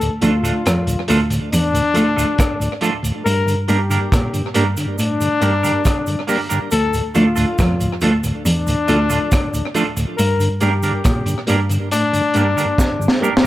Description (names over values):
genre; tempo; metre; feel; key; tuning
roots reggae; 69 BPM; 4/4; straight; D minor; A4 = 441 Hz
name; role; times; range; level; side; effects
clear trombone; second line; 0.0-13.2 s; D4 to Bb4; -21 LUFS; left 4 dB; tape echo, plate reverb
mellow tonewheel organ; accompaniment; 0.0-13.5 s; D2 to D4; -23 LUFS; equal; slow rotary speaker, tape echo
warm cello; bass; 0.0-12.5 s; D2 to Bb2; -19 LUFS; equal; none
crunchy breakbeat drum kit; drums; 0.0-13.5 s; hi-hat, kick drum, rim click, snare drum; -21 LUFS; equal; tape echo
cabasa; percussion; 0.0-13.4 s; none; -32 LUFS; right 6 dB; none
clean electric guitar; accompaniment; 0.2-13.5 s; A3 to Bb4; -23 LUFS; right 5 dB; tape echo, plate reverb
room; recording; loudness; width
light reverb; none; -15 LUFS; side -15 dB against mid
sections
0.0-13.5 A section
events
break 0.0-1.5; drum fill 12.8-13.5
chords
0.0 Dm; 3.3 Gm; 6.7 Dm; 10.2 Gm